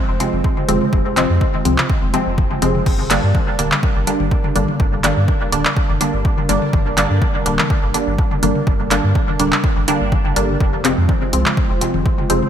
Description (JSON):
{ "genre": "dub techno", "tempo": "124 BPM", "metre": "4/4", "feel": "straight", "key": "G phrygian", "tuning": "A4 = 440 Hz", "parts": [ { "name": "dark analog pad", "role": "sustained chords", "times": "0.0-12.5 s", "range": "G3 to C5", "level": "-27 LUFS", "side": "right 1 dB", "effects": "chorus, sidechain pumping" }, { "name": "soft dub sub bass", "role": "bass", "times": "0.1-12.4 s", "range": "D1 to G2", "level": "-21 LUFS", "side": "equal", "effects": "tube saturation, sidechain pumping" }, { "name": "filtered dub chord stab", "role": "stabs", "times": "0.2-12.5 s", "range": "C3 to D4", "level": "-19 LUFS", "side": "equal", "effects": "chorus, phaser, sidechain pumping, dub echo" }, { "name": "deep house drum kit", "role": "drums", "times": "0.2-12.4 s", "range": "crash cymbal, handclaps, hi-hat", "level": "-22 LUFS", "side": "equal", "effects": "overdrive, studio reverb, dub echo" }, { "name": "electronic toms", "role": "percussion", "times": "0.3-12.5 s", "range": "none", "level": "-28 LUFS", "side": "left 4 dB", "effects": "sidechain pumping on toms, studio reverb, dub echo" }, { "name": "electronic kick drum", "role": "drums", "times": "0.4-12.2 s", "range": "none", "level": "-19 LUFS", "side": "equal", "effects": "overdrive, studio reverb" } ], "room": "light reverb", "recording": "bright 1980s-style digital production", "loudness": "-14 LUFS", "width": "side -9 dB against mid", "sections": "0.0-12.5 A section", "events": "none", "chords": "0.0 Fm; 2.9 Gm; 10.6 Fm" }